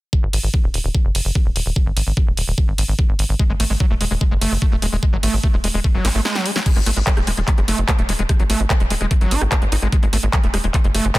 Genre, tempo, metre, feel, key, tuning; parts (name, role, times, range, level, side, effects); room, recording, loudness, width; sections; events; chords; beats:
psychedelic trance; 147 BPM; 4/4; straight; A4 = 441 Hz
electronic kick drum; drums; 0.1-11.2 s; -17 LUFS; equal; overdrive
tight sequencer bass; bass; 0.2-11.1 s; D#1 to G#1; -20 LUFS; equal
big-room dance drum kit; drums; 0.3-11.2 s; crash cymbal, handclaps, hi-hat, rim click, snare drum; -23 LUFS; equal
screaming distorted acid line; riff; 3.4-11.2 s; F#3 to D#4; -24 LUFS; right 1 dB; distortion, chorus, auto-pan, sidechain pumping, tape echo
digital ambience; dense, heavily limited modern master; -16 LUFS; side -19 dB against mid
0.1-6.7 A section; 6.7-11.2 B section
drum fill 6.0-6.7; break 6.3-6.7
0.1 G#5
| 0.13 0.54 0.95 1.35 | 1.76 2.17 2.58 2.99 | 3.40 3.80 4.21 4.62 | 5.03 5.43 5.84 6.25 | 6.66 7.07 7.48 7.88 | 8.29 8.70 9.11 9.52 | 9.93 10.33 10.74 11.15